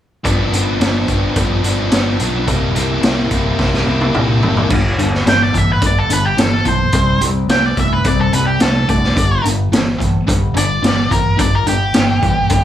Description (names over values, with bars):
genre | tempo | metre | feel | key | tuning
blues rock power trio and southern rock | 108 BPM | 4/4 | straight | G mixolydian | A4 = 440 Hz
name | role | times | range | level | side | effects
biting overdriven guitar | riff | 0.2-12.6 s | G2 to E4 | -18 LUFS | left 2 dB | none
fingered electric bass | bass | 0.2-12.6 s | G1 to C2 | -19 LUFS | equal | none
raw garage drum kit | drums | 0.2-12.6 s | crash cymbal, hi-hat, kick drum, snare drum, toms | -16 LUFS | equal | none
octave-fuzz lead guitar | melody | 5.3-12.6 s | G4 to G5 | -17 LUFS | equal | distortion, slapback echo
room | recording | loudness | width
light reverb | small room ambience | -12 LUFS | side -11 dB against mid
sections
0.2-4.7 A section; 4.7-12.6 B section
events
drum fill 3.6-4.7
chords
0.2 G7; 2.5 C7; 4.7 G5; 6.9 C5; 9.2 G5